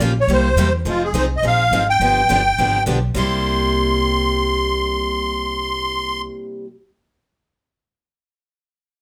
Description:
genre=acoustic string swing (jazz manouche)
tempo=210 BPM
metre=4/4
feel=swing 57% on 8ths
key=unclear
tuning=A4 = 439 Hz
part: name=picked steel-string acoustic guitar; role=accompaniment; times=0.0-6.7 s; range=C3 to Ab4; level=-26 LUFS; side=equal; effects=none
part: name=picked steel-string acoustic guitar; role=accompaniment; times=0.0-6.7 s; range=C3 to Ab4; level=-29 LUFS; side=equal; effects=none
part: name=upright bass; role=bass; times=0.0-6.3 s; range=F1 to E2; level=-25 LUFS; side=equal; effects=none
part: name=musette accordion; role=melody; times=0.2-6.2 s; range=F4 to C6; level=-21 LUFS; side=equal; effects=none
room=moderate studio reverb, RT60 0.5 s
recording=none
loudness=-18 LUFS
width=mono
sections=0.9-3.2 A section; 3.2-5.4 B section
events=none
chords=0.3 C7; 0.9 Fm7; 2.0 G7b9; 3.2 C7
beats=0.01 0.29 0.58 | 0.87 1.15 1.44 1.72 | 2.01 2.30 2.58 2.87 | 3.15 3.44 3.73 4.01 | 4.30 4.59 4.87 5.16

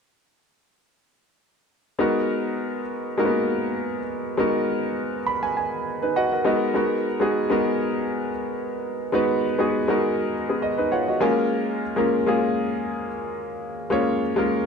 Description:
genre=soul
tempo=101 BPM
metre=4/4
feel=swing 54% on 16ths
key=G# dorian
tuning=A4 = 442 Hz
part: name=clear concert grand piano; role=solo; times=2.0-14.7 s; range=G#3 to B5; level=-21 LUFS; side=equal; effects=slapback echo
room=moderate echo chamber reverb, RT60 2.0 s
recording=none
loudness=-21 LUFS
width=side -6 dB against mid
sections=2.0-6.8 A section; 6.8-14.7 B section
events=grand piano fill 5.0-6.8, 10.3-11.5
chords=2.0 G#m9; 11.2 A#m7/G#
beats=| 2.00 2.59 3.19 3.78 | 4.38 4.97 5.57 6.17 | 6.76 7.36 7.95 8.55 | 9.14 9.74 10.34 10.93 | 11.53 12.12 12.72 13.32 | 13.91 14.51

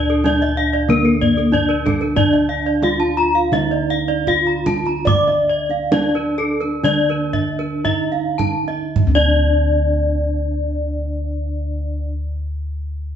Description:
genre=Balinese gamelan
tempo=52-94 BPM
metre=4/4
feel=straight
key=D pelog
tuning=A4 = 442 Hz
part: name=gamelan-type bronze metallophone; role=melody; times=0.0-12.1 s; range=Bb3 to D5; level=-21 LUFS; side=equal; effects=none
part: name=gamelan-type bronze metallophone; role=arpeggios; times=0.0-12.1 s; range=A4 to D6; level=-21 LUFS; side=left 5 dB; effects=none
part: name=gamelan-type bossed gongs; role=bass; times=0.0-12.0 s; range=D2 to D5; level=-21 LUFS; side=equal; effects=none
part: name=gamelan-type bronze metallophone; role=arpeggios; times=0.1-12.1 s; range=A4 to Bb5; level=-26 LUFS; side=right 7 dB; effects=none
part: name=kendang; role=percussion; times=0.3-9.5 s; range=none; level=-22 LUFS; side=right 3 dB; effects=none
room=wet stone room reverb, RT60 1.1 s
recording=band playing live in one room, nothing above 8.0 kHz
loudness=-16 LUFS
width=side -8 dB against mid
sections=0.0-9.0 A section; 9.0-13.2 B section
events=slowing down 2.2-9.0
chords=none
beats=0.26 0.90 1.53 | 2.17 2.83 3.53 4.27 | 5.07 5.92 6.85 7.85 | 8.96 10.12 11.28

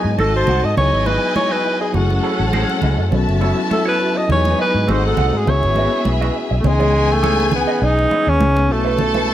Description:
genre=lush 1970s-style soul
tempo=102 BPM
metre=4/4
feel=swing 54% on 16ths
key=unclear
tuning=A4 = 440 Hz
part: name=warm studio string section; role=second line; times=0.0-9.3 s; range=B3 to A5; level=-23 LUFS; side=left 2 dB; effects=none
part: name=mellow tine electric piano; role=accompaniment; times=0.0-9.3 s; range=E3 to A4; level=-24 LUFS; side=left 2 dB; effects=fast stereo tremolo
part: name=mellow French horn section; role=sustained chords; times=0.0-9.3 s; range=B#2 to D#5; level=-29 LUFS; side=equal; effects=none
part: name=electric guitar through a small old amp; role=riff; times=0.0-9.3 s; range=A3 to F#5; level=-27 LUFS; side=right 7 dB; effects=wah
part: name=vintage muted fingered electric bass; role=bass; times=0.0-9.3 s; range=F#1 to G#2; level=-18 LUFS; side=equal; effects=none
part: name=mellow alto saxophone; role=melody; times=0.2-9.3 s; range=G#3 to D#5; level=-19 LUFS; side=equal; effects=none
part: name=congas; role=percussion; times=0.2-9.3 s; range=none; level=-25 LUFS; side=right 2 dB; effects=none
room=light reverb, small room ambience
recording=none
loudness=-14 LUFS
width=side -12 dB against mid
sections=0.0-6.6 A section; 6.6-9.3 B section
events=alto saxophone solo 0.0-6.6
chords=0.2 G#7b9; 0.8 C#m11; 1.9 F#m9; 3.1 B9sus4; 4.3 Emaj9; 4.9 G#7b9; 5.5 C#m11; 6.6 C#m7; 8.7 B9sus4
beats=0.19 0.77 1.36 | 1.95 2.54 3.12 3.71 | 4.30 4.88 5.47 6.06 | 6.64 7.23 7.82 8.40 | 8.99

